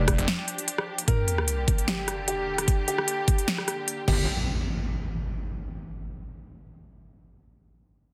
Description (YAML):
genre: heavy wobble dubstep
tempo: 150 BPM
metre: 4/4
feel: half-time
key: G minor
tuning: A4 = 440 Hz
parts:
  - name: dark grand piano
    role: melody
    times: 0.0-4.2 s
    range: G4 to D5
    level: -35 LUFS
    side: equal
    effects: dub echo
  - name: rich symphonic string section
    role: sustained chords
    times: 0.0-4.3 s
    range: D3 to G4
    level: -37 LUFS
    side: equal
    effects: sidechain pumping
  - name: wobble bass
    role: bass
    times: 0.0-0.2, 4.1-4.3 s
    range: F1 to G1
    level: -28 LUFS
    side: equal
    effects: chorus, overdrive
  - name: big-room dance drum kit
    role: drums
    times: 0.1-4.2 s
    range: crash cymbal, hi-hat, rim click, snare drum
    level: -30 LUFS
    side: equal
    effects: overdrive
  - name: electronic kick drum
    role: drums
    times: 0.1-4.2 s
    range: none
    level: -26 LUFS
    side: equal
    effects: overdrive
  - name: sub drop and impact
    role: sound effects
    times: 1.1-5.7 s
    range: none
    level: -33 LUFS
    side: equal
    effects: none
room: light reverb, digital ambience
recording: dense, heavily limited modern master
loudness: -27 LUFS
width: mono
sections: 0.0-1.1 A section; 1.1-4.3 B section; 4.3-5.9 C section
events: drop 0.0-1.1; break 0.3-1.1; impact 1.1-2.7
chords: 0.0 Fsus2; 1.1 Gm; 4.3 N.C.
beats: 0.28 0.68 | 1.08 1.48 1.88 2.28 | 2.68 3.08 3.48 3.88 | 4.28 4.68 5.08 5.48